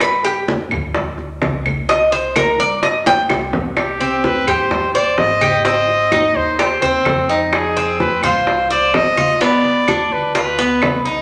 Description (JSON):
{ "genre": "latin, Cuban son and guajira", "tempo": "128 BPM", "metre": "4/4", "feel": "straight", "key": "C minor, C harmonic minor from 3.8 s", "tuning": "A4 = 441 Hz", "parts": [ { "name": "Cuban tres", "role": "arpeggios", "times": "0.0-11.2 s", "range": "B3 to G5", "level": "-19 LUFS", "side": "equal", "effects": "none" }, { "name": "upright bass", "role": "bass", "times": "0.0-11.2 s", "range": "G1 to G2", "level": "-33 LUFS", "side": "equal", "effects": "none" }, { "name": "bongos", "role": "percussion", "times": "0.0-11.1 s", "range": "none", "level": "-24 LUFS", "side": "equal", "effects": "none" }, { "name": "claves", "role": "percussion", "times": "0.0-11.1 s", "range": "none", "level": "-27 LUFS", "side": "equal", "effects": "none" }, { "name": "congas", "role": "percussion", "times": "0.0-11.1 s", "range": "none", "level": "-30 LUFS", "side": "equal", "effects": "none" }, { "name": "clear trumpet", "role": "melody", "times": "3.8-11.0 s", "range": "G4 to Eb5", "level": "-19 LUFS", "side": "equal", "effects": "none" } ], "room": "wet large studio reverb, RT60 1.2 s", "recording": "none", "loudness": "-16 LUFS", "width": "mono", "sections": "0.0-3.8 A section; 3.8-11.2 B section", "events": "Cuban tres solo 0.0-3.8; drum fill 3.1-3.8", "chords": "0.0 G5; 1.9 C5; 3.8 Cm; 5.6 Abmaj7; 7.5 Fm7; 9.4 G7" }